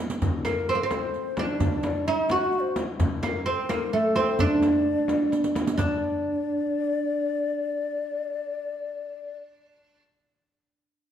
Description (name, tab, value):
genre	Persian modal ensemble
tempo	86 BPM (dotted quarters)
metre	6/8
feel	straight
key	D dastgah homayun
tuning	A4 = 440 Hz
part	riq	percussion	0.1-6.0 s	none	-34 LUFS	right 5 dB	none
part	tombak	percussion	0.1-6.0 s	none	-31 LUFS	right 1 dB	none
part	frame drum	percussion	0.2-6.0 s	none	-32 LUFS	left 3 dB	none
part	oud	melody	0.4-10.0 s	A3 to F#4	-25 LUFS	right 2 dB	none
part	breathy reedy low ney	second line	0.4-9.4 s	A4 to F#5	-30 LUFS	left 6 dB	none
room	wet recital hall reverb, RT60 1.4 s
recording	dark, warm production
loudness	-23 LUFS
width	side -9 dB against mid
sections	0.0-5.8 A section; 5.8-8.6 B section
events	drum fill 0.0, 5.3-5.8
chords	none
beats	| 0.22 0.92 | 1.61 2.31 | 3.00 3.70 | 4.39 5.09 | 5.79 6.48 | 7.18 7.87